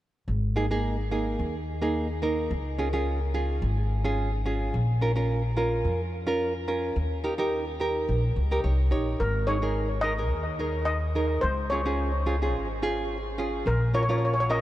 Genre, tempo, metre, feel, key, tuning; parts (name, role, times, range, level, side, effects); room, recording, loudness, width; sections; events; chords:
calypso; 108 BPM; 4/4; straight; A4 = 439 Hz
upright bass; bass; 0.3-14.6 s; Ab1 to F2; -28 LUFS; equal
nylon-string guitar; accompaniment; 0.6-14.6 s; Bb3 to Db5; -28 LUFS; right 2 dB
steel pan; melody; 9.2-14.6 s; Bb4 to Eb5; -29 LUFS; left 1 dB; tape echo
moderate huge ambient reverb, RT60 7.2 s; dreamy mix soaked in reverb; -24 LUFS; side -14 dB against mid
0.3-9.2 A section; 9.2-14.6 B section
nylon-string guitar fill 8.4-9.2
0.3 Absus2; 2.5 Db; 4.7 Bbm; 7.0 Eb7; 9.2 Absus2; 11.4 Db; 13.7 Bbm